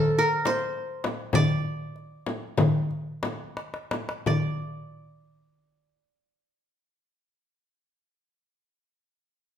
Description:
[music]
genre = Turkish makam ensemble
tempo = 168-208 BPM (eighths)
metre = 9/8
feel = straight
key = unclear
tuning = A4 = 440 Hz
[part]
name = qanun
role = melody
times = 0.0-8.9 s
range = A4 to D5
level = -27 LUFS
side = equal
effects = none
[part]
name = darbuka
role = percussion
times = 0.5-4.6 s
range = none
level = -28 LUFS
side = left 1 dB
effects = none
[part]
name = frame drum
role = percussion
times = 0.5-4.6 s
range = none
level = -29 LUFS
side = left 2 dB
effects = none
[sound]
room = wet large studio reverb, RT60 1.1 s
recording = band playing live in one room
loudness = -25 LUFS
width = side -9 dB against mid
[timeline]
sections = 0.0-4.3 A section; 4.3-7.5 B section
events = slowing down 0.0-4.3; drum fill 3.6-4.3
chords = none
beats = 0.16 0.45 0.74 1.04 | 1.34 1.65 1.95 2.27 2.58 2.91 3.24 3.57 3.92 | 4.27 4.63 4.98 5.34 5.70 6.05 6.41 6.77 7.12

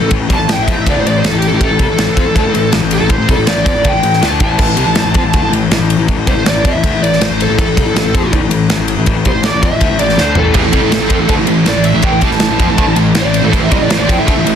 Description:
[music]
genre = heavy metal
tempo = 161 BPM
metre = 4/4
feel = straight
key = A minor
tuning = A4 = 436 Hz
[part]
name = high-gain lead guitar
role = melody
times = 0.0-14.5 s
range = G4 to A5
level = -16 LUFS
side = right 2 dB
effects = distortion
[part]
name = distorted electric guitar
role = riff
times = 0.0-14.6 s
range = A2 to D4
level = -17 LUFS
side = left 8 dB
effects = distortion
[part]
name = fuzz picked electric bass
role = bass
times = 0.0-14.6 s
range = A1 to F2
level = -18 LUFS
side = equal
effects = overdrive
[part]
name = modern studio drum kit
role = drums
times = 0.1-14.6 s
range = crash cymbal, kick drum, ride cymbal, snare drum, toms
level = -15 LUFS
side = equal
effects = none
[part]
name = heavy high-gain guitar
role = riff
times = 10.5-14.6 s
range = A2 to C4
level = -17 LUFS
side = right 14 dB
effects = distortion
[part]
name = heavy high-gain guitar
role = riff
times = 10.5-14.6 s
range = A2 to C4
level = -19 LUFS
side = right 2 dB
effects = distortion
[sound]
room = small room ambience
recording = dense, heavily limited modern master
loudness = -10 LUFS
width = side -8 dB against mid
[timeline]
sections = 0.0-14.6 A section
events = lead electric guitar solo 0.0-14.6; drum fill 10.2-10.6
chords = 0.0 Am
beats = | 0.12 0.49 0.86 1.24 | 1.61 1.98 2.36 2.73 | 3.10 3.48 3.85 4.22 | 4.60 4.97 5.34 5.71 | 6.09 6.46 6.83 7.20 | 7.58 7.95 8.32 8.69 | 9.06 9.44 9.81 10.18 | 10.56 10.93 11.30 11.67 | 12.05 12.42 12.79 13.16 | 13.54 13.91 14.28

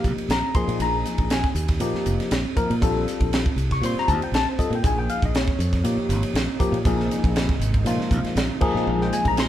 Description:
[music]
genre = electric jazz fusion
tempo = 119 BPM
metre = 4/4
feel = straight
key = unclear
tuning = A4 = 440 Hz
[part]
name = barky tine electric piano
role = accompaniment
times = 0.0-9.5 s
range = F3 to Db6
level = -25 LUFS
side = left 3 dB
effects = phaser
[part]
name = modern bright fingered electric bass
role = bass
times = 0.0-9.5 s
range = F1 to Bb2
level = -25 LUFS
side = equal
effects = none
[part]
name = crisp fusion drum kit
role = drums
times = 0.0-9.5 s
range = crash cymbal, hi-hat, kick drum, ride cymbal, snare drum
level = -24 LUFS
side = right 1 dB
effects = none
[part]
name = shimmering ambient pad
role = sustained chords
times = 6.3-9.5 s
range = C3 to Eb4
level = -33 LUFS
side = right 3 dB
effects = none
[sound]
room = moderate stone room reverb, RT60 1.2 s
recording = band playing live in one room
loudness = -20 LUFS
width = side -12 dB against mid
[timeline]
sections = 0.0-9.5 A section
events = none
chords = 0.0 Abmaj13 (rootless); 0.5 Absus2/Bb; 2.8 F9/Bb; 4.8 Bbm11; 6.9 Dbmaj9; 8.6 Ab69/Bb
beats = 0.29 | 0.80 1.30 1.81 2.31 | 2.82 3.32 3.83 4.33 | 4.84 5.34 5.84 6.35 | 6.85 7.36 7.86 8.36 | 8.87 9.37

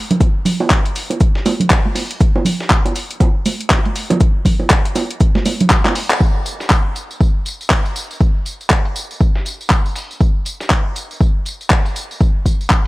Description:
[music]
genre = house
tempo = 120 BPM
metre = 4/4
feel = swing 60% on 16ths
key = none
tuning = none
[part]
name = deep house drum kit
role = drums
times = 0.1-12.8 s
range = handclaps, hi-hat, tambourine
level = -19 LUFS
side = equal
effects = none
[part]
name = congas and bongos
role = percussion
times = 0.1-5.9 s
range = none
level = -18 LUFS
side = right 3 dB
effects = sidechain pumping on perc
[part]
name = dusty soul sampler-style drum kit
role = drums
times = 0.2-12.8 s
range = hi-hat, shaker, snare drum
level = -30 LUFS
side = equal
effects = high-pass filter on perc, low-pass filter on perc, high-pass filter on snare, low-pass filter on snare, high-pass filter on hats, low-pass filter on hats, high-pass filter on room, low-pass filter on room
[part]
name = electronic kick drum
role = drums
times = 0.2-12.8 s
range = none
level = -14 LUFS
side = equal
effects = none
[sound]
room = digital ambience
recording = dry, gritty hardware recording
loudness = -14 LUFS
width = side -19 dB against mid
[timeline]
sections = 0.0-6.2 A section; 6.2-12.9 B section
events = drum fill 5.8-6.2; band accent 6.1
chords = none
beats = | 0.21 0.71 1.21 1.71 | 2.21 2.71 3.21 3.71 | 4.21 4.71 5.21 5.71 | 6.21 6.71 7.21 7.71 | 8.21 8.71 9.21 9.71 | 10.21 10.71 11.21 11.71 | 12.21 12.71

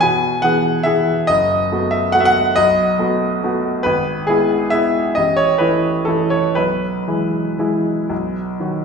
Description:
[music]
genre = classical, piano waltz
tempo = 116-146 BPM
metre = 3/4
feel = rubato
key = E major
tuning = A4 = 441 Hz
[part]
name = clear grand piano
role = solo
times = 0.0-8.8 s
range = F#1 to G#5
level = -15 LUFS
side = equal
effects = none
[sound]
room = wet recital hall reverb, RT60 1.7 s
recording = recorded in a church or concert hall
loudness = -15 LUFS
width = side -5 dB against mid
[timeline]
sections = 0.0-8.8 A section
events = none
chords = 0.0 E; 1.3 B7/F#; 3.8 E/G#; 5.2 A5; 6.6 E/B; 8.1 B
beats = | 0.03 0.44 0.86 | 1.29 1.71 2.14 | 2.57 2.99 3.42 | 3.85 4.28 4.72 | 5.16 5.60 6.07 | 6.57 7.09 7.60 | 8.10 8.60

